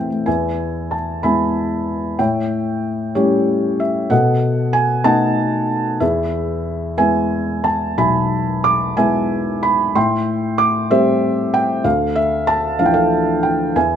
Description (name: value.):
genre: classical, lyrical solo piano.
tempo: 62 BPM (dotted quarters).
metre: 6/8.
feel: rubato.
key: unclear.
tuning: A4 = 442 Hz.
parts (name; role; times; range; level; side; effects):
felt-muted upright piano; solo; 0.0-14.0 s; B1 to D6; -15 LUFS; equal; none.
room: light reverb.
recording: close, detailed microphones.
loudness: -15 LUFS.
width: side -8 dB against mid.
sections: 0.3-14.0 A section.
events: none.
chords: 0.3 E; 2.2 A7; 4.1 B7; 6.0 E; 10.0 Am7; 11.8 Dmadd9.